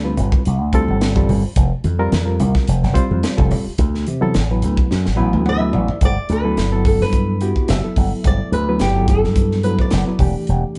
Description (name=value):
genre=electric jazz fusion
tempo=108 BPM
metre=4/4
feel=swing 55% on 16ths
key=G major from 6.0 s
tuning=A4 = 440 Hz
part: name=bright reed electric piano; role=accompaniment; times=0.0-10.8 s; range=E3 to G5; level=-24 LUFS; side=equal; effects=fast tremolo
part: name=slap bass with an envelope filter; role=bass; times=0.0-10.6 s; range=E1 to C3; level=-21 LUFS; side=equal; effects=none
part: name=crisp fusion drum kit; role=drums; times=0.2-10.8 s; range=hi-hat, kick drum, snare drum, toms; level=-22 LUFS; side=equal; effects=none
part: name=congas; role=percussion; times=0.2-5.9 s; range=none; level=-27 LUFS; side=equal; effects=none
part: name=flamenco guitar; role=melody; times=5.5-10.2 s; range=G4 to E5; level=-25 LUFS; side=equal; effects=none
room=light reverb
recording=band playing live in one room, nothing above 10.6 kHz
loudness=-17 LUFS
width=mono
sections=0.0-6.0 A section; 6.0-10.8 B section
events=drum fill 4.9-6.0; reed electric piano fill 4.9-6.0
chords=0.0 G9sus4; 1.6 Fsus24; 3.8 D9; 6.0 Gmaj9; 10.2 Em7